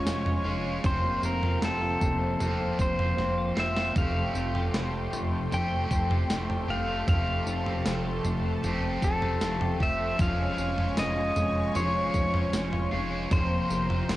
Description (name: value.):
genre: dream pop.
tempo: 77 BPM.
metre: 4/4.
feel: straight.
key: F major.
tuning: A4 = 439 Hz.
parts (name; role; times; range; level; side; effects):
pedal steel guitar; melody; 0.0-14.2 s; A4 to G5; -31 LUFS; left 1 dB; cassette tape, tape echo.
cranked stack guitar; accompaniment; 0.0-14.2 s; F2 to G4; -33 LUFS; right 2 dB; overdrive, harmonic tremolo, wide subtle chorus, cassette tape.
lush unison pad; sustained chords; 0.0-14.2 s; F4 to Db6; -37 LUFS; right 1 dB; chorus, cassette tape.
clean electric guitar; arpeggios; 0.0-14.2 s; F2 to G4; -34 LUFS; left 4 dB; analog chorus, cassette tape, tape echo.
chorused synth bass; bass; 0.1-14.2 s; F1; -32 LUFS; equal; none.
gated 80s digital drum machine; drums; 0.1-14.2 s; kick drum, snare drum, tambourine, toms; -30 LUFS; equal; gated reverb, gated reverb snare, cassette tape.
room: light reverb.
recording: home recording on cassette.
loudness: -25 LUFS.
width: side -15 dB against mid.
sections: 0.0-14.2 A section.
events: drum fill 3.2-4.0.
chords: 0.0 Db/F; 0.8 Bbsus2/F; 4.0 Fadd9; 10.2 Db/F; 13.3 Bbsus2/F.